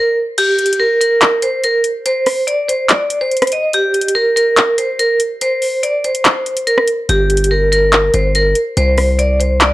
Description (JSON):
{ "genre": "hip hop, trap", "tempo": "143 BPM", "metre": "4/4", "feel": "half-time", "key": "G minor", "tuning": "A4 = 440 Hz", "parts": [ { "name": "vibraphone with hard mallets", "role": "melody", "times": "0.0-9.7 s", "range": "G4 to Eb5", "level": "-13 LUFS", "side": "equal", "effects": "none" }, { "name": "trap drum kit", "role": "drums", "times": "0.4-9.7 s", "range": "crash cymbal, handclaps, hi-hat, rim click", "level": "-15 LUFS", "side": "equal", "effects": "none" }, { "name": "distorted 808-style bass", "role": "bass", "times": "7.1-9.7 s", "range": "G1 to C2", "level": "-15 LUFS", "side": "equal", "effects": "distortion" } ], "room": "little or no reverb", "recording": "dry, gritty hardware recording", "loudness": "-12 LUFS", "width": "side -16 dB against mid", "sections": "0.4-9.7 A section", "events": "break 0.0-0.4; kick muted 0.4-7.1", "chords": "0.4 N.C.; 7.1 Gm; 8.8 N.C." }